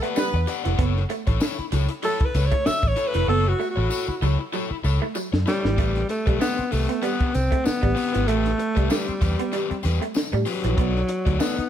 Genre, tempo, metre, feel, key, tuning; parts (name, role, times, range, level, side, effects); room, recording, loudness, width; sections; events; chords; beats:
funk; 96 BPM; 4/4; swing 56% on 16ths; A4 = 440 Hz
breathy alto saxophone; melody; 0.0-11.7 s; F#3 to E5; -25 LUFS; equal
overdriven electric guitar; accompaniment; 0.0-11.6 s; C4 to F#5; -31 LUFS; left 9 dB
electric guitar through a small old amp; riff; 0.0-11.5 s; E3 to B3; -30 LUFS; right 6 dB
compact cocktail drum kit; drums; 0.0-11.7 s; hi-hat, kick drum, snare drum; -25 LUFS; equal
tambourine; percussion; 0.2-11.6 s; -39 LUFS; left 4 dB
vintage muted fingered electric bass; bass; 0.3-11.6 s; F1 to A2; -23 LUFS; equal
light reverb; -20 LUFS; side -10 dB against mid
0.0-5.8 A section; 5.8-11.7 B section
alto saxophone solo 0.0-5.8; drum fill 3.3-5.8
0.0 Em9; 0.8 F#m7; 5.8 Am9; 10.8 B7#9
0.17 | 0.79 1.42 2.04 2.66 | 3.29 3.91 4.53 5.16 | 5.78 6.41 7.03 7.65 | 8.28 8.90 9.53 10.15 | 10.78 11.40